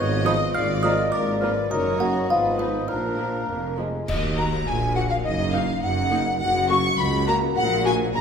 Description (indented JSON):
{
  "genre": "cinematic, playful, whimsical film cue",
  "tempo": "103 BPM",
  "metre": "2/4",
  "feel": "straight",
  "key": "Eb minor",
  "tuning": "A4 = 441 Hz",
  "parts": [
    { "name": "music box", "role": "melody", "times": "0.0-3.7 s", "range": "D5 to F6", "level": "-27 LUFS", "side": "equal", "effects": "none" },
    { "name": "mellow clarinet", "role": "second line", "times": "0.0-3.8 s", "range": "D4 to F5", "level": "-29 LUFS", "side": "left 2 dB", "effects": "none" },
    { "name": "rich studio violin section", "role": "second line", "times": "0.0-8.2 s", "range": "Bb4 to Db6", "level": "-29 LUFS", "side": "left 4 dB", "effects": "none" },
    { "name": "dark French horn section", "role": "sustained chords", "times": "0.0-8.2 s", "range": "Bb3 to Gb4", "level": "-29 LUFS", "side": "left 5 dB", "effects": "none" },
    { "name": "mellow tuba", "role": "bass", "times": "0.0-8.2 s", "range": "F1 to Eb2", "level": "-30 LUFS", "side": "right 4 dB", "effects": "none" },
    { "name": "rich studio cello section", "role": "bass", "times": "0.0-8.2 s", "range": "Db2 to Bb2", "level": "-30 LUFS", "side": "right 2 dB", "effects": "none" },
    { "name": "rich studio double bass section", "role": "bass", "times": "0.0-8.2 s", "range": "F1 to Eb2", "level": "-30 LUFS", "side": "right 3 dB", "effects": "none" },
    { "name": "mellow bassoon", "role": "accompaniment", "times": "0.2-4.1 s", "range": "F3 to Bb3", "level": "-32 LUFS", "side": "right 3 dB", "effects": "none" },
    { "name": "rich studio viola section", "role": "accompaniment", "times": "0.2-7.9 s", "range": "F3 to Gb4", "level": "-32 LUFS", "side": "equal", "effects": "none" },
    { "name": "rich studio violin section", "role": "melody", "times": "0.3-8.2 s", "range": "D4 to Db6", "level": "-32 LUFS", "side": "left 2 dB", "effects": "none" },
    { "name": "mellow hollow silver concert flute", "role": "second line", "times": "0.3-8.2 s", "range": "Eb5 to Db6", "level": "-28 LUFS", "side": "left 1 dB", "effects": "none" },
    { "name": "warm oboe", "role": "second line", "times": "0.3-3.8 s", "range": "Eb5 to F5", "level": "-33 LUFS", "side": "right 1 dB", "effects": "none" },
    { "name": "clash cymbals and concert bass drum", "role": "percussion", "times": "4.1-5.2 s", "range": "none", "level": "-32 LUFS", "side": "equal", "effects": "none" }
  ],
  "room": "wet scoring stage reverb, RT60 1.5 s",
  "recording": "minimal, uncompressed stereo recording",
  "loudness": "-20 LUFS",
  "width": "side -6 dB against mid",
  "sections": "0.0-4.1 A section; 4.1-8.2 B section",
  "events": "band accent 4.1-4.7",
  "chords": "0.0 Fm7b5/Ab; 0.6 Bb7/Ab; 1.7 Ebm/Gb; 2.3 Fm7b5/Ab; 2.9 Bb; 4.1 Ebm; 5.2 Ebm/Gb; 6.4 Gb; 7.6 Gb/Bb"
}